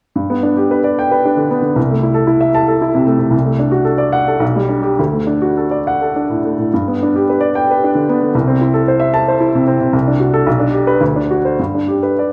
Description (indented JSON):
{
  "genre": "classical, romantic character piece for solo piano",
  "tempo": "100-116 BPM",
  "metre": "3/4",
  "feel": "rubato",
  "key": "G major",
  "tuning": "A4 = 441 Hz",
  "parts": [
    { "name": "warm upright piano", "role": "solo", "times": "0.2-12.3 s", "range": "B1 to A5", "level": "-15 LUFS", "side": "equal", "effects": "none" }
  ],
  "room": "wet recital hall reverb, RT60 1.4 s",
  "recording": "none",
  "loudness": "-15 LUFS",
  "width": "mono",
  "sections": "0.1-12.3 A section",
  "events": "none",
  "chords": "0.1 G; 1.8 Am/C; 3.3 D7/C; 4.4 G/B; 5.0 D; 6.7 G; 8.3 Am/C; 9.9 D7/C; 10.5 G/B; 11.0 D7; 11.6 G",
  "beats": "| 0.14 0.69 1.23 | 1.76 2.29 2.81 | 3.33 3.87 4.41 | 4.98 5.56 6.14 | 6.71 7.25 7.80 | 8.34 8.88 9.41 | 9.94 10.46 11.00 | 11.58 12.19"
}